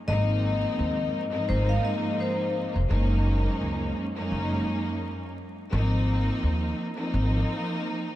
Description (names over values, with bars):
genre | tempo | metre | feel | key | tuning
hip hop | 85 BPM | 4/4 | swing 57% on 16ths | Ab mixolydian | A4 = 436 Hz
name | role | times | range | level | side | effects
vibraphone with medium hard mallets | melody | 0.1-2.5 s | C5 to F5 | -31 LUFS | left 4 dB | ping-pong delay
warm studio string section | accompaniment | 0.1-8.2 s | Gb2 to Eb4 | -28 LUFS | equal | none
upright bass | bass | 0.1-7.4 s | F1 to Eb2 | -25 LUFS | equal | none
room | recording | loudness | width
moderate cathedral reverb, RT60 5.0 s | dreamy mix soaked in reverb, vinyl crackle | -24 LUFS | side -14 dB against mid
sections
0.0-8.2 A section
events
none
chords
0.1 Ab6; 2.9 Gb69; 5.7 Ab6